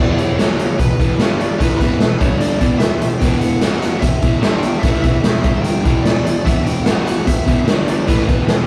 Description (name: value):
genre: hard rock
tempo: 148 BPM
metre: 4/4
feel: straight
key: E dorian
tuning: A4 = 440 Hz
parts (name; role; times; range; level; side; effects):
- smooth overdriven lead guitar; melody; 0.0-8.6 s; B4 to G5; -28 LUFS; equal; none
- overdriven semi-hollow guitar; riff; 0.0-8.6 s; E2 to A3; -22 LUFS; equal; none
- fuzz picked electric bass; bass; 0.0-8.7 s; E1 to A1; -26 LUFS; equal; none
- raw garage drum kit; drums; 0.2-8.6 s; hi-hat, kick drum, snare drum; -18 LUFS; equal; none
room: light reverb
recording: rough rehearsal-room recording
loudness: -16 LUFS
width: mono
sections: 0.0-8.7 A section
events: none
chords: 0.0 E5; 0.4 F#5; 0.8 E5; 1.2 G5; 1.6 E5; 2.2 G5; 2.6 E5; 3.6 F#5; 4.0 E5; 4.4 G5; 4.8 E5; 5.5 G5; 5.9 E5; 6.9 F#5; 7.3 E5; 7.7 G5; 8.1 E5